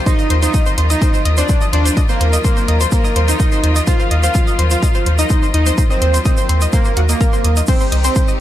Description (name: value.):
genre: melodic techno.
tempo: 126 BPM.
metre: 4/4.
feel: straight.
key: unclear.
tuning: A4 = 439 Hz.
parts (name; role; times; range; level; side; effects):
clear studio string section; sustained chords; 0.0-8.4 s; C3 to G4; -25 LUFS; left 1 dB; sidechain pumping.
analog pluck; arpeggios; 0.0-8.3 s; Gb4 to Eb6; -23 LUFS; left 2 dB; chorus, sidechain pumping, ping-pong delay.
analog synth brass; melody; 0.1-8.4 s; Bb3 to F4; -21 LUFS; equal; chorus, sidechain pumping, ping-pong delay.
soft supersaw; second line; 0.1-8.4 s; Bb4 to F5; -25 LUFS; equal; cassette tape, sidechain pumping, ping-pong delay.
electronic kick drum; drums; 0.1-8.3 s; none; -15 LUFS; equal; none.
punchy analog drum machine; drums; 0.1-8.3 s; crash cymbal, hi-hat, ride cymbal; -26 LUFS; equal; overdrive.
egg shaker; percussion; 0.1-8.4 s; none; -26 LUFS; right 3 dB; none.
round analog bass; bass; 0.3-8.1 s; C2 to Eb2; -14 LUFS; equal; sidechain pumping.
room: little or no reverb.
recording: none.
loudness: -12 LUFS.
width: side -12 dB against mid.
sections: 0.0-8.4 A section.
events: none.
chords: 0.1 Ebmadd9; 7.7 Cm.